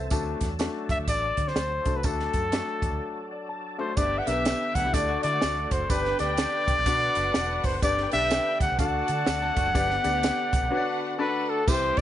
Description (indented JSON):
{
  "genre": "uptempo 1960s-style soul",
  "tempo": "125 BPM",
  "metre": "4/4",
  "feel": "swing 62% on 8ths",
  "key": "unclear",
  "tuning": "A4 = 440 Hz",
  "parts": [
    { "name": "warm concert grand piano", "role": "accompaniment", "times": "0.0-12.0 s", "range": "E3 to A5", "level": "-32 LUFS", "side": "left 5 dB", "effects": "none" },
    { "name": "overdriven tonewheel organ", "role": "sustained chords", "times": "0.0-12.0 s", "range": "C3 to A4", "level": "-38 LUFS", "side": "right 1 dB", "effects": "slow rotary speaker, chorus vibrato" },
    { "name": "vintage muted fingered electric bass", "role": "bass", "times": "0.0-12.0 s", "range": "E1 to D3", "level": "-32 LUFS", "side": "right 1 dB", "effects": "none" },
    { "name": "compact cocktail drum kit", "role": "drums", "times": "0.1-12.0 s", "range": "crash cymbal, hi-hat, kick drum, ride cymbal, snare drum", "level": "-28 LUFS", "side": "right 1 dB", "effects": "none" },
    { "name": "tambourine", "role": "percussion", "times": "0.1-12.0 s", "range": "none", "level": "-42 LUFS", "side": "right 8 dB", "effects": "none" },
    { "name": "mellow trumpet", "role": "melody", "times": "0.9-12.0 s", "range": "A4 to F#5", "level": "-26 LUFS", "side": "left 1 dB", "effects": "slapback echo" },
    { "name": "vibraphone with soft mallets", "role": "second line", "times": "3.8-12.0 s", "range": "A4 to F#5", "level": "-39 LUFS", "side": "right 4 dB", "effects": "none" },
    { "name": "warm studio string section", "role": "second line", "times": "4.0-12.0 s", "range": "A3 to A5", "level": "-34 LUFS", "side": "equal", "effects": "none" },
    { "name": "semi-hollow electric guitar", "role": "riff", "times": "4.7-5.9, 9.4-9.9 s", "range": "F#3 to A4", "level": "-36 LUFS", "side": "left 6 dB", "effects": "none" }
  ],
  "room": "light reverb, small room ambience",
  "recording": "nothing above 10.7 kHz",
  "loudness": "-23 LUFS",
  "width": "side -12 dB against mid",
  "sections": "0.0-4.0 A section; 4.0-11.7 B section",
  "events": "break 3.0-4.0, 10.7-11.7; grand piano fill 3.0-4.0",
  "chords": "0.1 D; 4.0 G; 4.9 D; 5.9 G; 6.9 Bm; 7.8 G; 8.8 D; 9.8 G; 10.7 Bm; 11.2 D",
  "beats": "| 0.12 0.60 1.08 1.56 | 2.04 2.53 3.01 3.49 | 3.97 4.46 4.94 5.42 | 5.90 6.38 6.86 7.34 | 7.83 8.31 8.79 9.27 | 9.75 10.23 10.71 11.20 | 11.68"
}